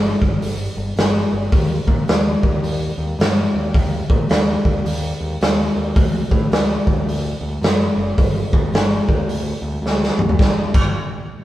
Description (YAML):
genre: blues rock power trio and southern rock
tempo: 108 BPM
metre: 4/4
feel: swing 64% on 8ths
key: G minor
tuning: A4 = 440 Hz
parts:
  - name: growling picked electric bass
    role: bass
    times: 0.0-10.9 s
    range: F#1 to Bb2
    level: -23 LUFS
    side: equal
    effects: overdrive
  - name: raw garage drum kit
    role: drums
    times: 0.2-10.8 s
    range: crash cymbal, hi-hat, kick drum, snare drum, toms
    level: -16 LUFS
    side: equal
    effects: none
room: light reverb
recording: band playing live in one room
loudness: -16 LUFS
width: side -14 dB against mid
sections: 0.0-10.4 A section; 10.4-11.4 B section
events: drum fill 9.8-10.4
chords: none